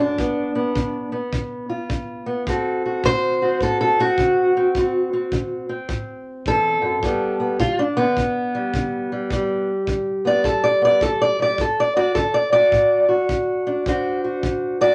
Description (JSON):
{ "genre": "acoustic country blues, solo or duo", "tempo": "105 BPM", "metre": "4/4", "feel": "swing 64% on 8ths", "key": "D mixolydian", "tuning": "A4 = 435 Hz", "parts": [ { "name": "fingerpicked steel-string acoustic guitar", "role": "melody", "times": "0.0-14.9 s", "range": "D2 to D5", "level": "-21 LUFS", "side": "equal", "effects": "none" }, { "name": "kick drum", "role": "drums", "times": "0.2-14.6 s", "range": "none", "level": "-31 LUFS", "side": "equal", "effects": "none" } ], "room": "moderate small room reverb, RT60 0.6 s", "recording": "none", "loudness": "-20 LUFS", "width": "mono", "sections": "0.0-14.9 A section", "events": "steel-string acoustic guitar solo 0.0-14.9", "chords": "0.2 G7; 2.5 D7; 7.0 G; 11.6 D7" }